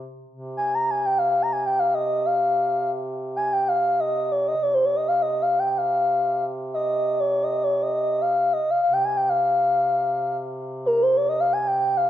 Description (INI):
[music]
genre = Arabic maqam ensemble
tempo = free time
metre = none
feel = none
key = C maqam bayati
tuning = A4 = 439 Hz
[part]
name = mellow duduk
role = drone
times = 0.0-12.1 s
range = C3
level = -32 LUFS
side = right 1 dB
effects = none
[part]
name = pure breathy sine lead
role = melody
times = 0.6-12.1 s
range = Bb4 to Bb5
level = -20 LUFS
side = equal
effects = chorus
[sound]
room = moderate recital hall reverb, RT60 1.5 s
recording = none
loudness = -20 LUFS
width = side -11 dB against mid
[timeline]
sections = 0.3-12.1 A section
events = none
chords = none